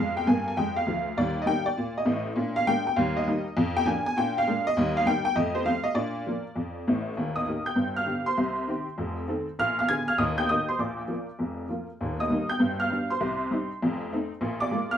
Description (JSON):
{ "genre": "jazz, stride piano", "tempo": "199 BPM", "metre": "4/4", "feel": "swing 65% on 8ths", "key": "Eb major", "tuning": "A4 = 437 Hz", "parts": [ { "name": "honky-tonk upright piano", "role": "solo", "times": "0.0-15.0 s", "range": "Eb1 to Ab6", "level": "-24 LUFS", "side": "equal", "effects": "none" } ], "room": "wet small room ambience, RT60 0.5 s", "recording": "band playing live in one room", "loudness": "-24 LUFS", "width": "side -9 dB against mid", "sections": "0.0-7.2 A section; 7.2-15.0 B section", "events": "none", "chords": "0.0 Bb7/F; 1.2 Eb; 2.4 Bb7; 3.0 Eb; 3.6 Bb/F; 4.2 Bb7; 4.8 Eb; 5.4 F; 6.0 Bb; 7.2 Eb; 7.8 G7; 8.4 Cm; 9.0 F7; 9.6 Bb7b9; 10.2 Eb; 10.8 Bb; 12.0 Eb; 12.6 G7; 13.2 Cm; 13.8 F7; 14.4 Bb7" }